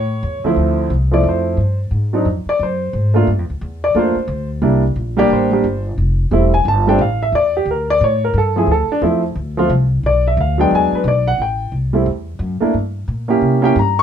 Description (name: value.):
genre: jazz piano trio.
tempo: 178 BPM.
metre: 4/4.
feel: swing 62% on 8ths.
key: D minor.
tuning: A4 = 440 Hz.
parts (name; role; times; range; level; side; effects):
warm concert grand piano; melody; 0.0-14.0 s; D2 to Db6; -15 LUFS; right 1 dB; none.
upright bass; bass; 0.0-14.0 s; E1 to C3; -18 LUFS; left 1 dB; none.
room: light reverb.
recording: minimal, uncompressed stereo recording.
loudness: -14 LUFS.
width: side -8 dB against mid.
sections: 0.6-11.4 A section; 11.4-14.0 A section.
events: grand piano solo 0.6-14.0.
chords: 0.0 A; 0.6 Dm7; 1.9 G#7#11; 3.3 G7(no3) (rootless); 4.6 C7(no3); 6.0 Fmaj9; 7.3 Gm6 (rootless); 8.0 A5; 8.7 Dm7; 10.0 Bm; 10.7 E7; 11.4 Am7; 12.7 Gm; 13.4 C7b9.